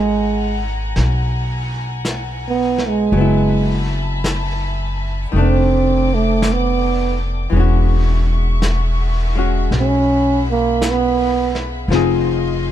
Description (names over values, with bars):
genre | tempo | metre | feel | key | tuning
jazz ballad | 55 BPM | 4/4 | swing 67% on 8ths | unclear | A4 = 441 Hz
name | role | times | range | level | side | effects
warm trombone | melody | 0.0-11.6 s | Ab3 to C#4 | -18 LUFS | right 4 dB | none
archtop guitar, miked and amplified | accompaniment | 0.0-12.7 s | Eb3 to Bb4 | -22 LUFS | left 6 dB | none
warm chamber string section | sustained chords | 0.0-12.7 s | G#4 to D6 | -27 LUFS | left 4 dB | none
upright bass | bass | 0.0-12.7 s | E1 to Cb2 | -18 LUFS | equal | none
vintage brush drum kit | drums | 1.0-12.7 s | brushed snare drum, hi-hat, snare drum | -28 LUFS | equal | none
room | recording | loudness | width
little or no reverb | dark, warm production | -15 LUFS | side -11 dB against mid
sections
0.0-12.7 A section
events
trombone solo 0.0-12.7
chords
0.0 Abm9; 3.1 Gbm11; 5.3 F13; 7.5 E69; 11.9 Fm7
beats
0.96 2.05 | 3.14 4.23 5.33 6.43 | 7.53 8.62 9.71 10.81 | 11.90